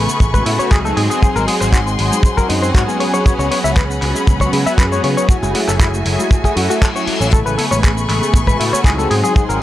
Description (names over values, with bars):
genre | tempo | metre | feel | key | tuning
nu-disco, nu disco | 118 BPM | 4/4 | straight | A major | A4 = 439 Hz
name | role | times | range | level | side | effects
warm analog pad | accompaniment | 0.0-9.6 s | C#3 to G#5 | -20 LUFS | equal | chorus, sidechain pumping, tape echo
clear studio string section | sustained chords | 0.0-9.6 s | G#3 to C#6 | -22 LUFS | left 2 dB | sidechain pumping
wide unison pluck | arpeggios | 0.0-9.6 s | F#3 to F#4 | -27 LUFS | equal | none
picked electric bass | bass | 0.0-9.6 s | F#1 to C#3 | -20 LUFS | equal | tube saturation
dusty soul sampler-style drum kit | drums | 0.1-9.6 s | handclaps, hi-hat, shaker | -23 LUFS | right 1 dB | none
kick drum | drums | 0.2-9.5 s | none | -13 LUFS | equal | none
direct-recorded clean electric guitar | riff | 0.3-9.6 s | F#3 to E5 | -20 LUFS | left 3 dB | wide subtle chorus
reverse cymbal | sound effects | 6.5-7.3 s | none | -26 LUFS | left 6 dB | none
room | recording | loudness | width
studio ambience | dry, gritty hardware recording, cassette tape | -12 LUFS | side -14 dB against mid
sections
0.0-9.6 A section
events
reverse cymbal 6.5-7.3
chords
0.0 Amaj9; 1.0 G#7; 3.0 C#7sus4; 5.3 F#m9; 7.3 Amaj9; 9.1 G#7